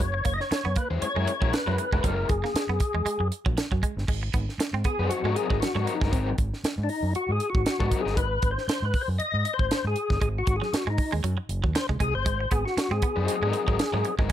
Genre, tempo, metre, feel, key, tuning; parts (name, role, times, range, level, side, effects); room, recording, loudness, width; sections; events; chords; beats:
funk; 117 BPM; 4/4; swing 56% on 16ths; Ab mixolydian; A4 = 440 Hz
percussive tonewheel organ; melody; 0.0-14.2 s; C4 to Eb5; -28 LUFS; left 3 dB; overdrive, chorus vibrato, slow rotary speaker
clean electric guitar; riff; 0.0-6.1, 10.2-14.3 s; Gb3 to C4; -34 LUFS; right 9 dB
overdriven fingered electric bass; bass; 0.0-14.3 s; F1 to Ab2; -29 LUFS; equal
tight funk drum kit; drums; 0.0-14.3 s; crash cymbal, hi-hat, kick drum, snare drum; -27 LUFS; right 1 dB
raw garage guitar; accompaniment; 0.9-8.2, 13.2-14.3 s; Gb3 to C5; -32 LUFS; left 6 dB; overdrive, tremolo, plate reverb
light reverb; -24 LUFS; side -11 dB against mid
0.0-4.1 A section; 4.1-14.3 B section
tonewheel organ solo 4.1-14.3
0.0 Gb9; 4.1 Ab9
| 0.00 0.51 1.02 1.53 | 2.04 2.55 3.06 3.58 | 4.09 4.60 5.11 5.62 | 6.13 6.64 7.15 7.66 | 8.17 8.68 9.20 9.71 | 10.22 10.73 11.24 11.75 | 12.26 12.77 13.28 13.79 | 14.30